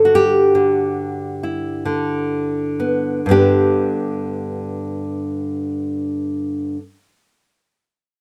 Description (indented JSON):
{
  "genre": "solo jazz",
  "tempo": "43 BPM",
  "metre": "4/4",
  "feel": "swing 68% on 8ths, rubato",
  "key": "G major",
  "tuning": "A4 = 441 Hz",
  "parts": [
    { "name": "nylon-string guitar", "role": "solo", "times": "0.0-6.8 s", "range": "G2 to A4", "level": "-19 LUFS", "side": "equal", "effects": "none" }
  ],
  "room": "little or no reverb",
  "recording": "close, detailed microphones",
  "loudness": "-20 LUFS",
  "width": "mono",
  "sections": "0.0-3.2 A section; 3.2-8.2 B section",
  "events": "slowing down 0.0-3.2",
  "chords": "0.0 G6; 3.2 G"
}